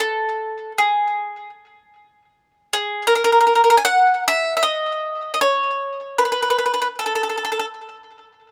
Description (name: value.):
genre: italian folk.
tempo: 77 BPM.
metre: 4/4.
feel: swing 54% on 8ths.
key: unclear.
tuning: A4 = 440 Hz.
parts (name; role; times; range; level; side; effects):
bowl-back mandolin; solo; 0.0-7.6 s; G#4 to G#5; -19 LUFS; equal; tape echo.
room: light reverb.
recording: close, detailed microphones.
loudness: -19 LUFS.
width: mono.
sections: 0.0-8.5 A section.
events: none.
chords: none.